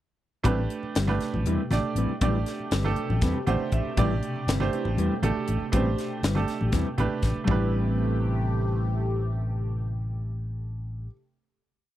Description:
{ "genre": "electric jazz fusion", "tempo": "240 BPM (eighths)", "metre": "7/8", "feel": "straight", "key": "A minor", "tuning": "A4 = 440 Hz", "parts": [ { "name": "clear grand piano", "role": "accompaniment", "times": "0.4-11.1 s", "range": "A3 to F#5", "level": "-30 LUFS", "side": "right 6 dB", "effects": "none" }, { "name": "phased analog pad", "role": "sustained chords", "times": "0.4-11.1 s", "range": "B2 to G4", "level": "-35 LUFS", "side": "equal", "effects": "phaser, chorus" }, { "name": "fingered electric bass", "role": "bass", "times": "0.4-11.1 s", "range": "G1 to E2", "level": "-27 LUFS", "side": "equal", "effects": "none" }, { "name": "congas", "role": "percussion", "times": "0.4-7.7 s", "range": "none", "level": "-31 LUFS", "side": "left 2 dB", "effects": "none" }, { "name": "mellow electric guitar", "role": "stabs", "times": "0.5-11.2 s", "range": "G3 to B4", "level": "-30 LUFS", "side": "left 2 dB", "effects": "analog chorus" }, { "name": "crisp fusion drum kit", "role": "drums", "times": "0.5-7.6 s", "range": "hi-hat, kick drum, snare drum, toms", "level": "-28 LUFS", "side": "left 1 dB", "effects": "none" } ], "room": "light reverb", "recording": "dry, close 1970s-style studio recording", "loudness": "-24 LUFS", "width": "side -13 dB against mid", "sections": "0.4-7.5 groove; 7.5-11.0 final chord", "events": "grand piano fill 3.2-4.0", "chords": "0.4 Am9" }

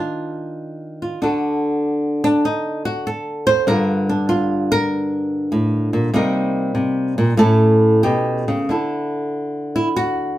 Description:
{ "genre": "solo jazz", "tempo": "97 BPM", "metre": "4/4", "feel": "swing 67% on 8ths, rubato", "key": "unclear", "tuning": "A4 = 440 Hz", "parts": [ { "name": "flamenco guitar", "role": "solo", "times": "0.0-10.4 s", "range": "G2 to C5", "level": "-17 LUFS", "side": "equal", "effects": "none" } ], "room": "wet studio reverb, RT60 0.5 s", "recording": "band playing live in one room", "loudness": "-16 LUFS", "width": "side -14 dB against mid", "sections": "0.0-8.7 A section; 8.7-10.4 B section", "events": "nylon-string guitar solo 0.0-8.7", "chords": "0.0 Ebmaj7sus2; 1.2 D; 3.7 Gm9; 6.1 Cm7; 7.4 Aadd9; 8.7 Dsus2" }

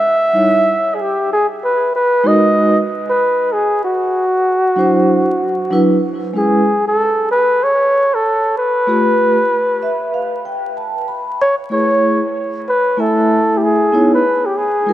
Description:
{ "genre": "hip hop", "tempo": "95 BPM", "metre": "4/4", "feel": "swing 63% on 16ths", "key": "C# minor", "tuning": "A4 = 440 Hz", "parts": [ { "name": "breathy flugelhorn", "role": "melody", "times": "0.0-14.9 s", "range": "F#4 to E5", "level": "-14 LUFS", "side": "equal", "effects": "dub echo" }, { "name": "vibraphone with soft mallets", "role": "accompaniment", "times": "0.3-14.9 s", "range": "F#3 to B5", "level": "-17 LUFS", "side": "right 1 dB", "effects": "dub echo" } ], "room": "moderate echo chamber reverb, RT60 1.6 s", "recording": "echo-heavy mix, vinyl crackle", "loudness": "-12 LUFS", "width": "side -13 dB against mid", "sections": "0.0-6.3 A section; 6.3-14.9 B section", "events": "vibraphone fill 9.5-11.4", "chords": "0.0 D#7b9; 1.3 G#m7; 3.8 D9; 6.3 C#m7; 8.9 G9; 11.4 Amaj7; 13.9 C#m9" }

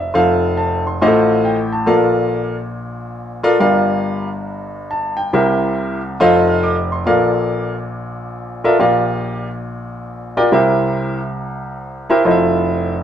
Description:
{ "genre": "gospel", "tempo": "139 BPM", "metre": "4/4", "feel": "swing 65% on 8ths", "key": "F major", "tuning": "A4 = 445 Hz", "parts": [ { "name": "warm upright piano", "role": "solo", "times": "0.0-13.0 s", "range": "F1 to F6", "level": "-15 LUFS", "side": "equal", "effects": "none" } ], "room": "moderate studio reverb, RT60 0.7 s", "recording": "band playing live in one room", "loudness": "-14 LUFS", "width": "side -9 dB against mid", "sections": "0.1-13.0 A section", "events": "none", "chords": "0.1 Fmaj7; 1.0 F7/A; 1.9 Bbmaj7; 3.6 Gm7; 5.3 C7; 6.2 F7; 7.1 Bbmaj7; 8.8 Gm7/Bb; 10.5 C7; 12.3 Fmaj7" }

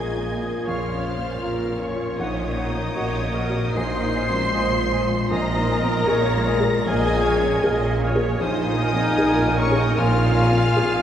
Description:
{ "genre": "cinematic, emotional film score for orchestra", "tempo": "78 BPM", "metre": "4/4", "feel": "rubato", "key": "unclear", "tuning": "A4 = 441 Hz", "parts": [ { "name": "warm studio violin section", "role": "melody", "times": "0.0-11.0 s", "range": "Db6 to C7", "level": "-31 LUFS", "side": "left 2 dB", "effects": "none" }, { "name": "rich studio violin section", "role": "second line", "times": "0.0-11.0 s", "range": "Db5 to C6", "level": "-30 LUFS", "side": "left 1 dB", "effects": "none" }, { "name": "warm clarinet", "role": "second line", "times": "0.0-11.0 s", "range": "Db4 to C5", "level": "-29 LUFS", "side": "left 2 dB", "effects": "none" }, { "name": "felt-muted upright piano", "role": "accompaniment", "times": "0.0-11.0 s", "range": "Bb1 to G#4", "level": "-26 LUFS", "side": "equal", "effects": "none" }, { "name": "rich studio viola section", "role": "accompaniment", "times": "0.0-11.0 s", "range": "Db4 to Eb5", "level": "-31 LUFS", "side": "right 1 dB", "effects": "none" }, { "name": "mellow French horn section", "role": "sustained chords", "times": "0.0-11.0 s", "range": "Db4 to C5", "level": "-27 LUFS", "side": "equal", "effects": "none" }, { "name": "rich studio cello section", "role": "bass", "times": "0.0-11.0 s", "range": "Bb2", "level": "-28 LUFS", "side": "right 2 dB", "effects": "none" }, { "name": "warm studio double bass section", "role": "bass", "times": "0.0-11.0 s", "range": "Bb1", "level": "-26 LUFS", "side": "equal", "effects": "none" }, { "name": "bright concert flute", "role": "second line", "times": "0.7-11.0 s", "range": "F5 to Ab5", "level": "-32 LUFS", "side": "left 2 dB", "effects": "none" }, { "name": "warm oboe", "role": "second line", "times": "0.7-11.0 s", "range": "Db5 to F5", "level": "-34 LUFS", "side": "right 1 dB", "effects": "none" } ], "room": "wet cathedral reverb, RT60 5.5 s", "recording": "recorded in a church or concert hall", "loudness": "-19 LUFS", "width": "side -10 dB against mid", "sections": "0.0-11.0 A section", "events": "none", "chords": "0.0 Bbm7; 2.2 Gb6/Bb; 3.8 Ab6/Bb; 5.3 B6/Bb; 6.9 Db/Bb; 8.4 Ab6/Bb" }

